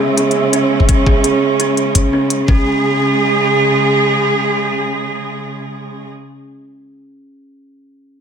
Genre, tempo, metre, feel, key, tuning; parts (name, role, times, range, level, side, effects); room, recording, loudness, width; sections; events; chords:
half-time drum and bass; 169 BPM; 4/4; half-time; C# minor; A4 = 437 Hz
rich studio cello section; sustained chords; 0.0-6.1 s; C#3 to G#4; -15 LUFS; right 2 dB; sidechain pumping
buzzing kalimba; arpeggios; 0.0-2.6 s; C#4 to G#4; -20 LUFS; right 1 dB; low-pass filter, ping-pong delay
flickering grainy texture; texture; 0.0-2.5 s; B3 to E5; -25 LUFS; right 3 dB; built-in reverb
electronic hi-hat; drums; 0.2-2.4 s; -19 LUFS; left 2 dB
electronic kick drum; drums; 0.8-2.6 s; -12 LUFS; left 1 dB
moderate echo chamber reverb, RT60 1.4 s; -12 LUFS; side -7 dB against mid
0.0-2.5 A section; 2.5-5.3 B section
0.0 C#5